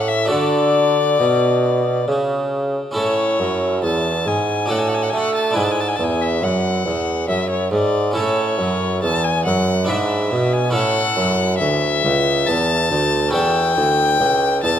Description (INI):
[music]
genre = classical, baroque-style sonata movement with continuo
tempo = 69 BPM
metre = 3/4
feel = straight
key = A major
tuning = A4 = 442 Hz
[part]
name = rich violin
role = melody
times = 0.0-14.8 s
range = C#5 to A5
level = -20 LUFS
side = left 6 dB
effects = none
[part]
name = harpsichord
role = accompaniment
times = 0.0-14.8 s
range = C#2 to B4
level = -22 LUFS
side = right 1 dB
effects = none
[part]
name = warm bassoon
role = bass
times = 0.0-14.8 s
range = C#2 to A3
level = -20 LUFS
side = right 2 dB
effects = none
[sound]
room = moderate recital hall reverb, RT60 1.8 s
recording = none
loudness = -16 LUFS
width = side -9 dB against mid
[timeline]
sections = 0.0-3.0 A section; 3.0-14.8 A section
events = none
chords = 0.3 D; 3.0 A; 4.7 D/A; 5.6 E7; 8.1 A; 9.9 E7/G#; 10.7 A; 13.3 A7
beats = | 0.30 1.20 2.08 | 2.96 3.83 4.69 | 5.55 6.41 7.28 | 8.15 9.02 9.88 | 10.74 11.60 12.47 | 13.33 14.19